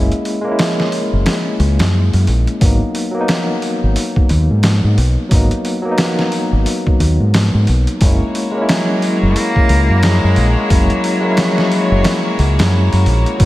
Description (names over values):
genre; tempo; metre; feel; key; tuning
trip hop; 89 BPM; 4/4; swing 60% on 16ths; unclear; A4 = 440 Hz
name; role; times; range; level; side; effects
barky tine electric piano; accompaniment; 0.0-13.5 s; F#3 to E4; -19 LUFS; left 1 dB; tremolo, tape echo
deep dub fingered electric bass; bass; 0.0-13.5 s; F#1 to G#2; -13 LUFS; equal; none
trip hop sampler-style drum kit; drums; 0.1-13.5 s; hi-hat, kick drum, snare drum; -17 LUFS; equal; overdrive, studio reverb
clear chamber violin section; sustained chords; 8.0-13.5 s; G#3 to B5; -22 LUFS; left 2 dB; vintage 12-bit sampler grit
clear cello; melody; 8.7-13.1 s; F#3 to A#3; -18 LUFS; equal; tape echo
room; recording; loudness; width
moderate lush hall reverb, RT60 2.9 s; dreamy mix soaked in reverb, vinyl crackle; -12 LUFS; side -16 dB against mid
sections
0.0-13.5 A section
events
none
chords
0.0 F#7; 2.6 G#m7; 8.0 F#7